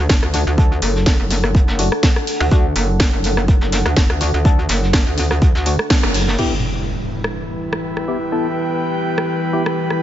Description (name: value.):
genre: bass house.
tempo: 124 BPM.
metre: 4/4.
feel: swing 54% on 16ths.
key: E minor.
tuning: A4 = 439 Hz.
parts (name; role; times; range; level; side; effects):
deep dark ambient pad; sustained chords; 0.0-10.0 s; E3 to F#5; -25 LUFS; left 1 dB; chorus, built-in reverb, sidechain pumping.
metallic wobble bass; bass; 0.0-6.4 s; F#1 to D2; -18 LUFS; equal; chorus, tube saturation, sidechain pumping.
electronic kick drum; drums; 0.1-6.0 s; none; -14 LUFS; equal; none.
house drum kit; drums; 0.1-10.0 s; crash cymbal, hi-hat, rim click, snare drum; -22 LUFS; equal; none.
soft brush drum kit; drums; 0.1-6.4 s; hi-hat, snare drum; -29 LUFS; equal; sidechain pumping on hats, high-pass filter on hats, high-pass filter on snare, high-pass filter on room.
percussive organ stab; stabs; 0.3-9.6 s; A3 to A4; -25 LUFS; left 2 dB; wide subtle chorus, sidechain pumping, ping-pong delay.
impact; sound effects; 6.4-8.3 s; none; -24 LUFS; equal; none.
airy breathy pad; texture; 7.0-10.0 s; E4 to G5; -23 LUFS; right 1 dB; chorus, sidechain pumping.
room: light reverb, digital ambience.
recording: nothing above 7.8 kHz.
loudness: -15 LUFS.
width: side -12 dB against mid.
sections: 0.0-6.4 A section; 6.4-10.0 B section.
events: band accent 5.9; impact 6.4-8.3.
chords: 0.0 D; 6.4 Em.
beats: 0.10 | 0.58 1.06 1.55 2.03 | 2.52 3.00 3.48 3.97 | 4.45 4.93 5.42 5.90 | 6.39 6.87 7.35 7.84 | 8.32 8.81 9.29 9.77.